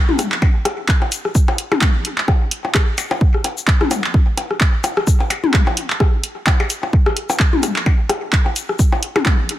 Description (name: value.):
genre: techno.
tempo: 129 BPM.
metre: 4/4.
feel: swing 57% on 16ths.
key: none.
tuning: none.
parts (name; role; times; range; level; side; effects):
minimal click drum kit; percussion; 0.1-9.4 s; percussion blips, rim click, toms; -20 LUFS; left 3 dB; overdrive, tape echo.
punchy analog drum machine; drums; 0.2-9.6 s; handclaps, hi-hat, shaker; -21 LUFS; right 1 dB; none.
electronic kick drum; drums; 0.4-9.4 s; none; -14 LUFS; equal; overdrive.
room: little or no reverb.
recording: none.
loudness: -14 LUFS.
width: side -14 dB against mid.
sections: 0.0-9.6 A section.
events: none.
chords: none.